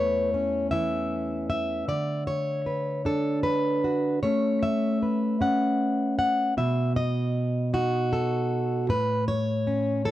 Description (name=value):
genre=folk, solo fingerstyle acoustic guitar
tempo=52 BPM (dotted quarters)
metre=6/8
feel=straight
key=A major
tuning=A4 = 440 Hz
part: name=fingerpicked plugged-in steel-string acoustic guitar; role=solo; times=0.0-10.1 s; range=E2 to F#5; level=-23 LUFS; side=equal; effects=none
room=light reverb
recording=dry, close 1970s-style studio recording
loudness=-24 LUFS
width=side -14 dB against mid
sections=0.0-10.1 A section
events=none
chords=0.0 Aadd9; 1.9 D6; 4.2 Aadd9; 6.6 B; 8.9 A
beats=0.72 | 1.89 3.06 | 4.24 5.42 | 6.58 7.74 | 8.89 10.05